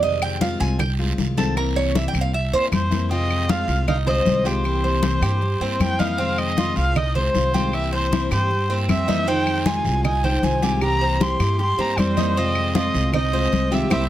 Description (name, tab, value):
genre	latin, Cuban son and guajira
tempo	156 BPM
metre	4/4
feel	straight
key	F minor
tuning	A4 = 440 Hz
part	picked plugged-in steel-string acoustic guitar	accompaniment	0.0-14.0 s	C3 to F4	-27 LUFS	left 5 dB	none
part	Cuban tres	arpeggios	0.0-14.0 s	C4 to Ab5	-25 LUFS	right 2 dB	none
part	upright bass	bass	0.0-14.1 s	C2 to G2	-23 LUFS	equal	none
part	congas	percussion	0.0-14.0 s	none	-25 LUFS	left 3 dB	none
part	guiro	percussion	0.0-14.0 s	none	-36 LUFS	right 6 dB	none
part	claves	percussion	0.2-14.0 s	none	-32 LUFS	left 2 dB	none
part	rich erhu	melody	2.7-14.0 s	C5 to C6	-24 LUFS	equal	none
part	nylon-string guitar	second line	8.9-14.0 s	G3 to G4	-27 LUFS	right 5 dB	none
room	light reverb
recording	close, detailed microphones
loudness	-18 LUFS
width	side -13 dB against mid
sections	0.0-3.1 A section; 3.1-14.1 B section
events	Cuban tres solo 0.0-3.1; band accent 13.9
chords	0.0 Fm7; 1.6 C7; 3.1 Fm7; 4.6 C7; 6.2 Fm7; 7.7 C7; 9.3 Fm7; 10.8 C7; 12.4 Fm7